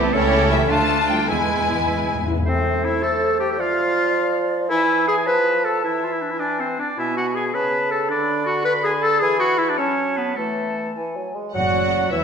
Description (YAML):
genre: quick classical-period movement for symphony orchestra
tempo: 106 BPM (dotted quarters)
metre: 6/8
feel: straight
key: A minor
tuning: A4 = 440 Hz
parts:
  - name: bright oboe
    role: second line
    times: 0.0-12.2 s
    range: E4 to B5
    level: -26 LUFS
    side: equal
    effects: none
  - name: warm studio violin section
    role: second line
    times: 0.0-2.3, 11.5-12.2 s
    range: E4 to B4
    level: -28 LUFS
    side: left 2 dB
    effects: none
  - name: warm bassoon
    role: accompaniment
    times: 0.0-12.2 s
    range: B2 to B3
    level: -25 LUFS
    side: right 2 dB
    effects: none
  - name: warm studio viola section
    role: accompaniment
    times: 0.0-2.3, 11.6-12.2 s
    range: E3 to E4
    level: -27 LUFS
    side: right 2 dB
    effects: none
  - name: mellow French horn section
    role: sustained chords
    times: 0.0-2.3, 11.6-12.2 s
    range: E3 to G4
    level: -31 LUFS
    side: left 5 dB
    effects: none
  - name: warm studio double bass section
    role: bass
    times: 0.0-2.3, 11.6-12.2 s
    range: E1 to E2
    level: -27 LUFS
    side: right 3 dB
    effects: none
  - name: rich studio violin section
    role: melody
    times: 0.1-2.2, 11.5-12.2 s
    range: C#5 to A5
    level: -26 LUFS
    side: left 5 dB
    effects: none
  - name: bright clarinet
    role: second line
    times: 0.1-12.2 s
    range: A3 to B4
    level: -22 LUFS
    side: left 1 dB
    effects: none
  - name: hollow concert flute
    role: second line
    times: 0.1-12.2 s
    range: C5 to B5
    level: -27 LUFS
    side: left 1 dB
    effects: none
  - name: warm studio cello section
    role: bass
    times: 0.1-2.2, 11.6-12.2 s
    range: E2 to A3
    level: -30 LUFS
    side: right 5 dB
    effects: none
  - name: timpani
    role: percussion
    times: 1.3-2.5, 11.6-12.1 s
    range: E2 to A2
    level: -27 LUFS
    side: left 2 dB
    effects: none
  - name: warm trumpet section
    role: stabs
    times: 11.5-12.2 s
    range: E5 to F#5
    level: -24 LUFS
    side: right 6 dB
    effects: none
room: wet scoring stage reverb, RT60 1.6 s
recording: minimal, uncompressed stereo recording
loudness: -18 LUFS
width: side -6 dB against mid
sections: 0.0-2.5 A section; 2.5-11.6 B section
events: timpani fill 1.3-2.5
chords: 0.1 A7/C#; 0.7 Dm; 1.3 E; 2.5 Am; 3.6 Dm/F; 4.7 E; 5.3 F; 5.8 A5/E; 7.0 Eadd9/B; 7.5 A/C#; 8.1 Bm/D; 9.2 E5; 9.8 F#m; 10.4 Esus4; 11.0 E; 11.6 Dadd9